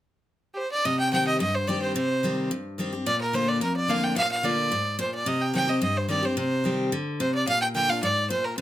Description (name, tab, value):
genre	bluegrass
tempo	218 BPM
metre	4/4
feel	straight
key	C minor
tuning	A4 = 440 Hz
part	clear fiddle	melody	0.5-8.6 s	G4 to G5	-25 LUFS	right 1 dB	none
part	picked steel-string acoustic guitar	accompaniment	0.9-8.6 s	F2 to G4	-26 LUFS	left 1 dB	none
room	light reverb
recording	close, detailed microphones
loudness	-23 LUFS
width	side -13 dB against mid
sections	0.9-8.6 A section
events	none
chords	0.0 N.C.; 0.9 Cm; 3.1 Bb; 5.3 Cm; 7.5 Bb